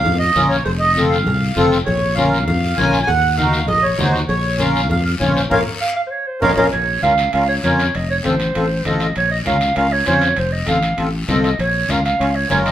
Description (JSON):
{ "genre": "latin, cumbia", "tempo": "198 BPM", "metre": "4/4", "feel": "straight", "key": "Bb minor, Bb harmonic minor from 6.7 s", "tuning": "A4 = 440 Hz", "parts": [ { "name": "accordion", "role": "melody", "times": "0.0-6.7 s", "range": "Bb4 to Ab5", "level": "-18 LUFS", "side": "right 2 dB", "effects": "none" }, { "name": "fingered electric bass", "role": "bass", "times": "0.0-12.7 s", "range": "F1 to F2", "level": "-20 LUFS", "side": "left 1 dB", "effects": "none" }, { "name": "cowbell and timbales", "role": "percussion", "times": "0.0-12.7 s", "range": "none", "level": "-29 LUFS", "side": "right 3 dB", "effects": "none" }, { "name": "congas", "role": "percussion", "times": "0.1-12.7 s", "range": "none", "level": "-25 LUFS", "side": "left 1 dB", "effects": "none" }, { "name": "guiro", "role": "percussion", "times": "0.1-12.7 s", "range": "none", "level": "-28 LUFS", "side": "left 4 dB", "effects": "none" }, { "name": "accordion", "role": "accompaniment", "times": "0.4-12.7 s", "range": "C4 to Db5", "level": "-20 LUFS", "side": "left 1 dB", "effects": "light tremolo tuning" }, { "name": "breathy clarinet", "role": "second line", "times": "5.8-12.7 s", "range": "C5 to F5", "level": "-18 LUFS", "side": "right 2 dB", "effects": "none" } ], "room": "moderate studio reverb, RT60 0.7 s", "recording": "band playing live in one room", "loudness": "-14 LUFS", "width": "side -11 dB against mid", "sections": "0.0-6.7 A section; 6.7-12.7 B section", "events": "drum fill 5.5-6.7; band accent 5.5-6.7; clarinet solo 6.7-12.7", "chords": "0.0 Bbm; 0.7 F; 1.9 Bbm; 3.1 Ebm; 4.3 Bbm; 7.9 F; 9.2 Bbm; 10.4 F; 11.6 Bbm", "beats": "0.04 0.35 | 0.65 0.96 1.26 1.56 | 1.87 2.17 2.47 2.78 | 3.08 3.38 3.69 3.99 | 4.29 4.60 4.90 5.21 | 5.51 5.81 6.12 6.42 | 6.72 7.03 7.33 7.64 | 7.94 8.25 8.55 8.85 | 9.16 9.46 9.77 10.07 | 10.37 10.68 10.98 11.29 | 11.59 11.89 12.20 12.50" }